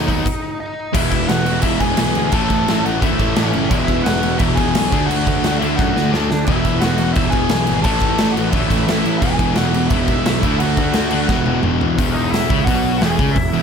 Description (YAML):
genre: punk rock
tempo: 174 BPM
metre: 4/4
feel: straight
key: E mixolydian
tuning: A4 = 441 Hz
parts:
  - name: bluesy overdriven lead guitar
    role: melody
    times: 0.0-13.6 s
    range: C#4 to A5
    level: -23 LUFS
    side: left 1 dB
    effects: distortion
  - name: sludgy distorted guitar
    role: riff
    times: 0.0-13.6 s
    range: E2 to D4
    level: -22 LUFS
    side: left 15 dB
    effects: overdrive
  - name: sludgy distorted guitar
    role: riff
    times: 0.0-13.6 s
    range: E2 to D4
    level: -23 LUFS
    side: right 13 dB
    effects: overdrive
  - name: fuzz picked electric bass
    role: bass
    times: 0.0-13.6 s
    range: E1 to F#2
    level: -23 LUFS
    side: equal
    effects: overdrive
  - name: big rock drum kit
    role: drums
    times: 0.1-13.4 s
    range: crash cymbal, hi-hat, kick drum, snare drum, toms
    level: -20 LUFS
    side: equal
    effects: none
  - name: fuzz guitar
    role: riff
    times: 0.9-13.6 s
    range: E2 to D4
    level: -24 LUFS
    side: right 1 dB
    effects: distortion
room: little or no reverb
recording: none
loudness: -14 LUFS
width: side -6 dB against mid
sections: 0.9-12.0 A section; 12.0-13.6 B section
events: stop 0.3-0.9; drum fill 5.8-6.5, 11.3-12.0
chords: 0.0 B; 0.9 E; 2.3 A; 3.7 E; 4.9 D; 6.5 E; 7.8 A5; 9.2 E; 10.4 D; 11.3 E5; 12.0 E